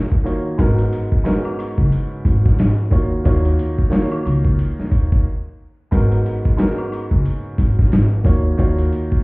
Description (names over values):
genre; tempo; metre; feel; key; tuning
hip hop, boom-bap hip-hop; 90 BPM; 4/4; swing 60% on 16ths; G# dorian; A4 = 439 Hz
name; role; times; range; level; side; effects
clear grand piano; accompaniment; 0.0-9.2 s; G#2 to C#5; -22 LUFS; equal; high-pass filter, low-pass filter
dusty soul sampler-style drum kit; drums; 0.1-9.2 s; hi-hat, kick drum, snare drum; -17 LUFS; equal; none
tube shaker and woodblock; percussion; 0.2-9.1 s; none; -34 LUFS; left 1 dB; none
upright bass; bass; 0.6-8.9 s; F#1 to D#2; -17 LUFS; equal; none
room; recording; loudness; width
little or no reverb; heard muffled through a wall, stone room reverb, vinyl crackle, EQ; -15 LUFS; side -28 dB against mid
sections
0.0-9.2 A section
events
break 5.3-5.9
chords
0.0 D#m9; 0.6 G#m11; 2.9 D#m9; 5.9 G#m11; 8.3 D#m9